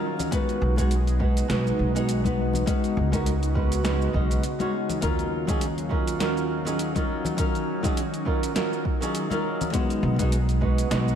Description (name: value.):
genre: sunset chillout.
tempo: 102 BPM.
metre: 4/4.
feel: swing 57% on 16ths.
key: Eb minor.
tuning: A4 = 441 Hz.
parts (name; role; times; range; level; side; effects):
flamenco guitar; accompaniment; 0.0-11.2 s; Gb3 to Eb5; -27 LUFS; moving between left 3 dB and right 6 dB; auto-pan, tape echo.
airy breathy pad; sustained chords; 0.0-11.2 s; Db3 to Gb4; -31 LUFS; equal; chorus.
upright bass; bass; 0.0-11.1 s; Bb1 to Eb2; -26 LUFS; equal; none.
deep house drum kit; drums; 0.2-11.2 s; hi-hat, shaker, snare drum; -34 LUFS; right 1 dB; overdrive.
congas; percussion; 0.2-11.0 s; none; -35 LUFS; left 4 dB; none.
electronic kick drum; drums; 0.3-10.8 s; none; -28 LUFS; equal; overdrive.
room: moderate echo chamber reverb, RT60 2.1 s.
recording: echo-heavy mix.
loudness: -22 LUFS.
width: side -9 dB against mid.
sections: 0.0-11.2 A section.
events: none.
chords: 0.3 B6; 2.7 Db9sus4; 5.0 Ebm9; 9.7 B6.